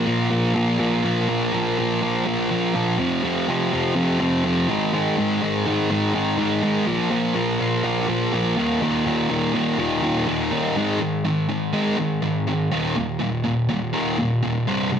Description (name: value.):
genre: rock.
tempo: 123 BPM.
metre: 4/4.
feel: straight.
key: unclear.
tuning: A4 = 440 Hz.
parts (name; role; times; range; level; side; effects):
fuzz guitar; solo; 0.0-15.0 s; C2 to Bb3; -19 LUFS; equal; distortion.
room: wet studio reverb, RT60 0.8 s.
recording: dense, heavily limited modern master.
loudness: -19 LUFS.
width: side -8 dB against mid.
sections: 0.0-10.8 A section; 10.8-15.0 B section.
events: half time 0.0-10.8.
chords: 0.0 Bb5; 3.0 F5; 4.7 Ab5; 6.9 Bb5; 8.6 Eb5; 10.8 Ab5; 12.7 Eb5.